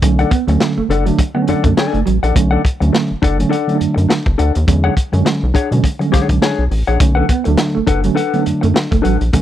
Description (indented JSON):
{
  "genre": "funk",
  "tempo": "103 BPM",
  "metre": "4/4",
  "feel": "swing 56% on 16ths",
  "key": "B dorian",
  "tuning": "A4 = 443 Hz",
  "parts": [
    { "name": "mellow electric guitar", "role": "accompaniment", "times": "0.0-9.4 s", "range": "D4 to G#5", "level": "-19 LUFS", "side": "left 7 dB", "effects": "none" },
    { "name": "mellow tine electric piano", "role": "stabs", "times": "0.0-9.4 s", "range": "D3 to D4", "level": "-18 LUFS", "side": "right 4 dB", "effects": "medium stereo tremolo" },
    { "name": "rubbery square bass", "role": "bass", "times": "0.0-9.4 s", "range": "F#1 to B2", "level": "-16 LUFS", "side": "equal", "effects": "none" },
    { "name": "crunchy breakbeat drum kit", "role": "drums", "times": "0.0-9.4 s", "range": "hi-hat, kick drum, snare drum", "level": "-16 LUFS", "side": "equal", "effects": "none" },
    { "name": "mellow electric guitar", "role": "riff", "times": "0.2-2.2, 7.2-9.1 s", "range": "F#3 to B3", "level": "-20 LUFS", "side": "right 8 dB", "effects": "none" }
  ],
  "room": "little or no reverb",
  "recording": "dry, close 1970s-style studio recording",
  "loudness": "-12 LUFS",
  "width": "side -12 dB against mid",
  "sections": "0.0-9.4 A section",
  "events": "none",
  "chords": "0.0 Bm7; 4.7 E13; 7.0 Bm7",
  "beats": "| 0.03 0.61 1.19 1.77 | 2.36 2.94 3.52 4.10 | 4.68 5.26 5.85 6.43 | 7.01 7.59 8.18 8.76 | 9.34"
}